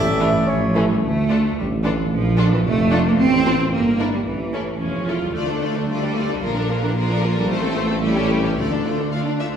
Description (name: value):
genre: cinematic, playful, whimsical film cue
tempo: 111 BPM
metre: 2/4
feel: straight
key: D minor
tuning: A4 = 440 Hz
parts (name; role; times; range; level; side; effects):
- bright oboe; second line; 0.0-0.8 s; C#5 to D5; -30 LUFS; equal; none
- small flute group; second line; 0.0-0.5 s; E5; -31 LUFS; right 1 dB; none
- warm bassoon; accompaniment; 0.0-0.9 s; A3 to C#4; -24 LUFS; equal; none
- dark French horn section; sustained chords; 0.0-0.5 s; none; barely audible; none; none
- bright studio double bass section; bass; 0.0-9.5 s; E1 to D2; -26 LUFS; right 2 dB; none
- clear studio cello section; bass; 0.0-9.4 s; A2 to C4; -22 LUFS; right 2 dB; none
- mellow tuba; bass; 0.0-9.5 s; E1 to D2; -24 LUFS; right 1 dB; none
- clear studio violin section; melody; 0.2-9.5 s; C#4 to F5; -30 LUFS; left 6 dB; none
- clear studio violin section; second line; 0.2-9.6 s; A3 to Bb4; -29 LUFS; left 3 dB; none
- clear studio viola section; accompaniment; 0.2-9.6 s; E3 to F4; -27 LUFS; right 1 dB; none
room: wet recital hall reverb, RT60 1.4 s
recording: recorded in a church or concert hall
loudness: -17 LUFS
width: side -8 dB against mid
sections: 0.0-1.0 A section; 1.0-9.6 B section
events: none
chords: 0.5 A; 1.0 D5; 2.1 Bbmaj7; 3.2 F/A (rootless); 3.7 Em7b5/G (rootless); 4.3 A; 5.4 Dm; 6.4 Bbmaj7; 7.5 F/A; 8.0 A7; 8.6 Dm